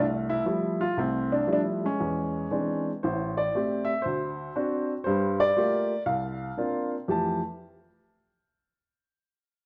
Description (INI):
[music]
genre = solo jazz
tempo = 119 BPM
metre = 4/4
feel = swing 69% on 8ths, rubato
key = F major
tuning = A4 = 441 Hz
[part]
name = warm upright piano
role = solo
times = 0.0-7.4 s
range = A1 to A5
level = -28 LUFS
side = equal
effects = none
[sound]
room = wet stone room reverb, RT60 1.2 s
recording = band playing live in one room, nothing above 10.8 kHz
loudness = -28 LUFS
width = mono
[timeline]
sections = 0.0-3.0 A section; 3.0-7.1 B section; 7.1-9.1 C section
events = none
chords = 0.0 Fmaj9; 2.0 E7b13; 3.0 Am7; 4.0 D7; 5.0 Gm9; 6.0 C9sus4; 7.1 Fmaj9